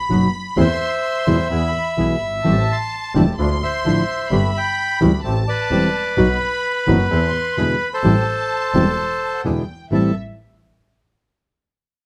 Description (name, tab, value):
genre	tango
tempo	128 BPM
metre	4/4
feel	rubato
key	A minor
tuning	A4 = 440 Hz
part	dark studio violin section	second line	0.0-10.1 s	E5 to C6	-31 LUFS	equal	none
part	nylon-string guitar	accompaniment	0.1-10.1 s	A2 to G4	-20 LUFS	equal	none
part	bandoneon	stabs	0.1-10.1 s	F3 to A4	-33 LUFS	equal	none
part	clear double bass	bass	0.1-10.1 s	E1 to E2	-24 LUFS	equal	none
part	bandoneon	melody	0.6-10.1 s	A4 to C6	-23 LUFS	equal	none
room	light reverb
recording	close, detailed microphones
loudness	-19 LUFS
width	mono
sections	0.0-9.9 A section; 9.9-11.8 B section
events	none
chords	0.0 B; 0.6 Am/E; 1.5 E; 2.4 Am7; 3.4 Dmadd9; 4.3 Gadd9; 5.2 Am7; 6.2 B; 7.1 Am/E; 7.6 E7; 8.0 Am7; 9.4 E7; 9.9 Am7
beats	0.10 | 0.57 1.04 1.50 1.97 | 2.44 2.91 3.38 3.85 | 4.32 4.78 5.25 5.71 | 6.18 6.64 7.11 7.57 | 8.04 8.51 8.97 9.45 | 9.91